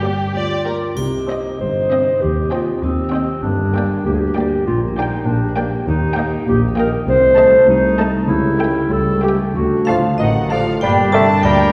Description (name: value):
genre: cinematic, playful, whimsical film cue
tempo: 98 BPM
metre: 2/4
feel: straight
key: C minor, G minor from 5.9 s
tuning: A4 = 440 Hz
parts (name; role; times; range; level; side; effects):
- muted chamber violin section; melody; 0.0-11.4 s; Bb4 to A5; -31 LUFS; equal; none
- muted chamber violin section; second line; 0.0-11.7 s; G4 to A5; -32 LUFS; equal; none
- muted chamber viola section; accompaniment; 0.0-11.4 s; A3 to D5; -29 LUFS; equal; none
- concert harp; arpeggios; 0.0-11.7 s; G2 to A4; -26 LUFS; equal; none
- muted chamber cello section; bass; 0.0-11.7 s; C2 to C3; -28 LUFS; equal; none
- muted chamber double bass section; bass; 0.0-11.7 s; G1 to Eb2; -27 LUFS; equal; none
- dark clarinet; second line; 0.3-11.7 s; C4 to C5; -20 LUFS; equal; none
- dark French horn section; sustained chords; 1.0-11.7 s; A3 to Bb4; -29 LUFS; equal; none
- mellow tuba; bass; 1.0-11.7 s; G1 to Eb2; -27 LUFS; equal; none
- triangle; percussion; 1.0-2.2 s; none; -42 LUFS; equal; none
- vibraphone with hard mallets; melody; 9.9-11.7 s; Eb5 to A5; -23 LUFS; equal; none
- warm bassoon; accompaniment; 9.9-11.7 s; Eb3 to A3; -20 LUFS; equal; none
- clear oboe; second line; 10.8-11.7 s; D4 to Bb4; -24 LUFS; equal; none
room: wet scoring stage reverb, RT60 1.8 s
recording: heard from further back in the room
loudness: -16 LUFS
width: mono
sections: 1.0-10.8 A section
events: none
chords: 0.0 Gm; 1.0 Cm; 2.2 Cm/Eb; 3.4 Gm; 4.7 Gm/Bb; 5.9 Eb; 7.1 Adim/C; 8.3 A7/C#; 9.5 D; 10.8 Gm